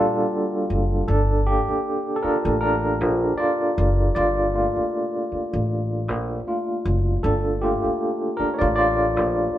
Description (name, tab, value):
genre	R&B, neo-soul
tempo	78 BPM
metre	4/4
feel	swing 56% on 16ths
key	G minor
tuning	A4 = 440 Hz
part	barky tine electric piano	accompaniment	0.0-9.6 s	G3 to D5	-21 LUFS	equal	overdrive, fast tremolo
part	upright bass	bass	0.0-9.5 s	F#1 to Bb1	-23 LUFS	equal	none
room	moderate stone room reverb, RT60 1.0 s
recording	band playing live in one room, nothing above 10.3 kHz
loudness	-20 LUFS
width	side -12 dB against mid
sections	0.0-1.1 A section; 1.1-9.6 A section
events	tine electric piano solo 1.1-9.6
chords	0.0 Gm9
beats	0.31 | 1.08 1.85 2.62 3.38 | 4.15 4.92 5.69 6.46 | 7.23 8.00 8.77 9.54